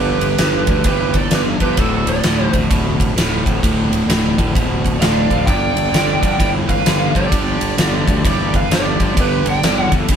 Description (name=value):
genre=blues rock power trio and southern rock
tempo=130 BPM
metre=4/4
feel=swing 63% on 8ths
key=unclear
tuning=A4 = 441 Hz
part: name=lead guitar through a small cranked amp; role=melody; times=0.0-9.9 s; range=A4 to G5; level=-21 LUFS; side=right 2 dB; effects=overdrive
part: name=biting lead guitar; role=second line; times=0.0-9.9 s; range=F#4 to D5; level=-25 LUFS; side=right 8 dB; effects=overdrive
part: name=overdriven semi-hollow guitar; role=riff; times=0.0-10.2 s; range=D2 to E3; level=-19 LUFS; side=equal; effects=none
part: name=fuzz fingered electric bass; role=bass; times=0.0-10.2 s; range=D1 to D2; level=-22 LUFS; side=equal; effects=overdrive
part: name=huge arena drum kit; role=drums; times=0.2-10.2 s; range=kick drum, ride cymbal, snare drum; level=-18 LUFS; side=equal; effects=none
room=moderate studio reverb, RT60 0.7 s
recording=band playing live in one room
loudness=-14 LUFS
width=side -8 dB against mid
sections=0.0-10.2 A section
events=none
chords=0.0 G; 1.8 D5; 5.5 G5